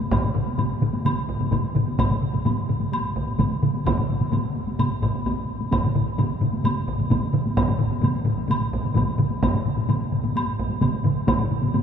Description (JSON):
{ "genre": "japanese traditional, taiko drum ensemble", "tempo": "129 BPM", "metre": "4/4", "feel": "straight", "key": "none", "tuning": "none", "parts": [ { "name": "taiko ensemble", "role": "percussion", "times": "0.0-11.8 s", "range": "none", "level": "-28 LUFS", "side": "equal", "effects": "none" }, { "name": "solo taiko drums", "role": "percussion", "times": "0.1-11.8 s", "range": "none", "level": "-26 LUFS", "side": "left 4 dB", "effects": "none" }, { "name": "solo taiko drums", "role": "percussion", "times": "0.1-11.4 s", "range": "none", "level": "-28 LUFS", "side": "right 2 dB", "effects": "none" }, { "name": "taiko ensemble", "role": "percussion", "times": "0.1-11.8 s", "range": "none", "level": "-26 LUFS", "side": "right 4 dB", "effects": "none" }, { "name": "woodblock", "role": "percussion", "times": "0.1-11.8 s", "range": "none", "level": "-32 LUFS", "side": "equal", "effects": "none" } ], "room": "wet cathedral reverb, RT60 6.9 s", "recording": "recorded in a church or concert hall", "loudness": "-21 LUFS", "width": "side -7 dB against mid", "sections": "0.0-11.8 A section", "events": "none", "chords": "none" }